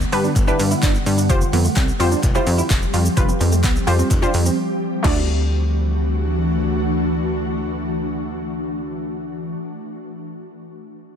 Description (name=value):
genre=dance-pop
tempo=128 BPM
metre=4/4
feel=straight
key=D major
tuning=A4 = 441 Hz
part: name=ethereal airy pad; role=sustained chords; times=0.0-9.6 s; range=D3 to F#5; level=-24 LUFS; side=left 1 dB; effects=ensemble chorus, built-in reverb, sidechain pumping
part: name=plucky analog bass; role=bass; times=0.0-9.6 s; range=F1 to G2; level=-21 LUFS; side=equal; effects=sidechain pumping
part: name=deep house drum kit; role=drums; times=0.0-5.2 s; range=crash cymbal, handclaps, hi-hat, kick drum, shaker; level=-20 LUFS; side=equal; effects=none
part: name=wide unison pluck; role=accompaniment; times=0.1-9.6 s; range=A3 to D5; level=-24 LUFS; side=left 1 dB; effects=sidechain pumping
part: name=electric guitar at the edge of break-up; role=riff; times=0.1-5.2 s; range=A3 to F4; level=-26 LUFS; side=right 8 dB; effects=analog chorus
part: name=group handclap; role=percussion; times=0.4-5.3 s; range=none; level=-36 LUFS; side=left 3 dB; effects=none
room=little or no reverb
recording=none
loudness=-17 LUFS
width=side -8 dB against mid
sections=0.0-5.0 A section; 5.0-8.8 B section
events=break 4.6-5.0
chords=0.0 G; 1.3 Fsus2; 5.0 Dadd9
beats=0.36 0.83 | 1.30 1.76 2.23 2.70 | 3.17 3.64 4.11 4.58 | 5.05 5.51 5.98 6.45 | 6.92 7.39 7.86 8.33